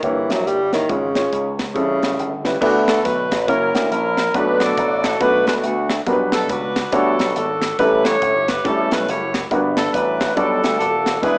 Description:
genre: uptempo gospel.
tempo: 139 BPM.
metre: 4/4.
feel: swing 62% on 8ths.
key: unclear.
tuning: A4 = 440 Hz.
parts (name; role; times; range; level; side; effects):
breathy tenor saxophone; melody; 0.0-2.4 s; C#3 to G3; -21 LUFS; equal; cassette tape.
warm upright piano; accompaniment; 0.0-11.4 s; G2 to D5; -20 LUFS; equal; cassette tape.
slap bass with an envelope filter; bass; 0.0-11.4 s; Eb1 to D2; -24 LUFS; equal; none.
crisp fusion drum kit; drums; 0.0-11.4 s; crash cymbal, hi-hat, kick drum, snare drum; -24 LUFS; equal; cassette tape.
clear saxophone section; melody; 2.9-11.4 s; A3 to D5; -20 LUFS; equal; cassette tape.
room: moderate spring reverb, RT60 1.6 s, studio reverb.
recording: home recording on cassette, small speaker sound.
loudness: -16 LUFS.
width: side -36 dB against mid.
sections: 0.0-2.6 A section; 2.6-11.4 B section.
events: none.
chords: 0.0 Gdim7; 0.9 Db/Ab; 1.8 A7; 2.6 D6; 3.5 F#7; 4.3 Bm7; 6.1 Gmaj7/B; 7.8 A7; 9.5 Gmaj7.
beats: 0.02 0.46 | 0.89 1.32 1.76 2.19 | 2.62 3.05 3.48 3.91 | 4.34 4.78 5.21 5.64 | 6.07 6.50 6.93 7.36 | 7.79 8.22 8.65 9.08 | 9.51 9.94 10.37 10.80 | 11.23.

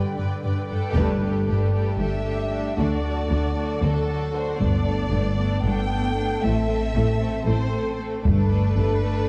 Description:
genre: cinematic, epic orchestral film score.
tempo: 230 BPM (eighths).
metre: 7/8.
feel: straight.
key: G major.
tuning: A4 = 440 Hz.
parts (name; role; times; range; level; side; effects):
warm symphonic violin section; melody; 0.0-9.3 s; A4 to G5; -34 LUFS; equal; none.
clear symphonic violin section; second line; 0.0-9.3 s; C4 to D5; -36 LUFS; equal; none.
warm studio viola section; accompaniment; 0.0-9.3 s; A3 to B4; -32 LUFS; equal; none.
warm French horn section; sustained chords; 0.0-9.3 s; F#3 to A4; -34 LUFS; equal; none.
rich symphonic cello section; bass; 0.0-9.2 s; D2 to D3; -29 LUFS; equal; none.
rich symphonic double bass section; bass; 0.2-9.2 s; G1 to G2; -28 LUFS; equal; none.
taiko ensemble; drums; 0.9-9.3 s; none; -28 LUFS; equal; none.
room: moderate scoring stage reverb, RT60 1.8 s.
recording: dark, warm production.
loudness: -23 LUFS.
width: mono.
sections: 0.9-9.3 A section.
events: band accent 0.9-1.5.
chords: 0.0 G; 0.9 Gadd9; 2.8 D; 4.6 Gadd9; 6.4 Am; 8.3 Gadd9.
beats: 0.17 0.43 0.69 | 0.95 1.21 1.47 1.73 1.99 2.25 2.51 | 2.77 3.04 3.30 3.56 3.82 4.08 4.34 | 4.60 4.86 5.12 5.38 5.64 5.91 6.17 | 6.43 6.69 6.95 7.21 7.47 7.73 7.99 | 8.25 8.51 8.78 9.04.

